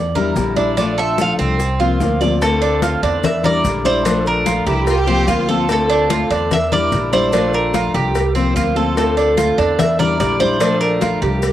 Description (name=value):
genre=latin, Cuban son and guajira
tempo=146 BPM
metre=4/4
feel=straight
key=unclear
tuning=A4 = 441 Hz
part: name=Cuban tres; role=arpeggios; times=0.0-11.5 s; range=C4 to D5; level=-20 LUFS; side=right 6 dB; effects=cassette tape
part: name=upright bass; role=bass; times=0.0-11.5 s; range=Bb1 to E2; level=-22 LUFS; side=equal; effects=none
part: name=fingerpicked steel-string acoustic guitar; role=accompaniment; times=0.2-11.5 s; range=D3 to F4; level=-20 LUFS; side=left 5 dB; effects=cassette tape
part: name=bongos and cowbell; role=percussion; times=0.2-11.5 s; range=none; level=-27 LUFS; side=left 6 dB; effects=none
part: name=congas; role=percussion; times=0.2-11.5 s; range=none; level=-24 LUFS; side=left 6 dB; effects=none
part: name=maracas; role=percussion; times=0.2-11.5 s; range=none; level=-36 LUFS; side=left 7 dB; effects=none
part: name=Cuban tres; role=melody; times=1.0-11.5 s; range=A4 to F5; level=-19 LUFS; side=right 1 dB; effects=cassette tape
part: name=clear chamber violin section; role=second line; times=4.7-5.6 s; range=E4 to G4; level=-22 LUFS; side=equal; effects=cassette tape
room=moderate spring reverb, RT60 1.4 s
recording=home recording on cassette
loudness=-14 LUFS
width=side -12 dB against mid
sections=0.0-2.4 A section; 2.4-11.5 B section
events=Cuban tres solo 0.0-2.4; drum fill 2.0-2.4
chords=0.0 Em7b5; 0.8 Bbmaj7; 1.6 C7sus4; 2.4 Dm7; 3.2 Em7b5; 4.1 Bbmaj7; 4.9 C7sus4; 5.7 Dm7; 6.5 Em7b5; 7.3 Bbmaj7; 8.2 C7sus4; 9.0 Dm7; 9.8 Em7b5; 10.6 Bbmaj7